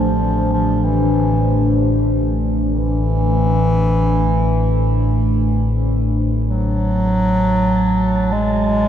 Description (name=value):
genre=dark ambient drone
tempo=free time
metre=none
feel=none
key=A minor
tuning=A4 = 440 Hz
part: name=mellow bass clarinet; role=melody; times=0.0-8.9 s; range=E3 to G#3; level=-19 LUFS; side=equal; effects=ping-pong delay
part: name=deep dark ambient pad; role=sustained chords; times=0.0-8.9 s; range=F#3 to E5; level=-21 LUFS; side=equal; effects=chorus, built-in reverb
part: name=deep rumbling drone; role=drone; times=0.0-8.9 s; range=A1 to A2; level=-18 LUFS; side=equal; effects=built-in reverb
part: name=wind-like tuned noise texture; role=texture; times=6.7-8.9 s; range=A5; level=-30 LUFS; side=right 4 dB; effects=built-in reverb
room=moderate huge ambient reverb, RT60 7.3 s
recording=dark, warm production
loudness=-14 LUFS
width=side -10 dB against mid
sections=0.0-8.9 A section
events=none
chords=0.0 Am; 6.5 F#m